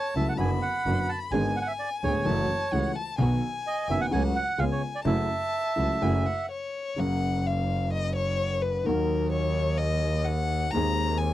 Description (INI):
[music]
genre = tango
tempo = 128 BPM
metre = 4/4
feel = rubato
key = F# minor, F# major from 7.0 s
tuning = A4 = 438 Hz
[part]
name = bandoneon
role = melody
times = 0.0-6.5 s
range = C#5 to A5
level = -29 LUFS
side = right 3 dB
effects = none
[part]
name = warm violin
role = second line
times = 0.0-11.3 s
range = A#4 to B5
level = -31 LUFS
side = left 5 dB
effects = none
[part]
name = dark studio string section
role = stabs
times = 0.1-6.2 s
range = A3 to G#4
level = -36 LUFS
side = right 6 dB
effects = slapback echo
[part]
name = warm concert grand piano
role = accompaniment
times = 0.2-11.3 s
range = D1 to G#4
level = -30 LUFS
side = left 1 dB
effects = none
[part]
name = clear double bass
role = bass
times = 0.2-11.3 s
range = F#1 to D#2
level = -29 LUFS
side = right 1 dB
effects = none
[sound]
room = light reverb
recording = dry, close 1970s-style studio recording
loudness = -24 LUFS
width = side -14 dB against mid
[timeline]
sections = 0.0-7.0 A section; 7.0-11.3 B section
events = stop 6.5-7.0; violin solo 7.0-11.3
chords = 0.4 Bm/F#; 1.3 G#dim; 2.3 F#m7; 3.2 B; 4.1 F#m/C#; 4.6 C#7; 5.1 F#m7; 7.0 F#; 8.9 D#m; 10.7 G#/D#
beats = 0.38 0.85 | 1.32 1.79 2.26 2.73 | 3.19 3.65 4.12 4.59 | 5.06 5.54 6.02 6.50 | 6.99 7.46 7.93 8.40 | 8.87 9.34 9.80 10.27 | 10.74 11.21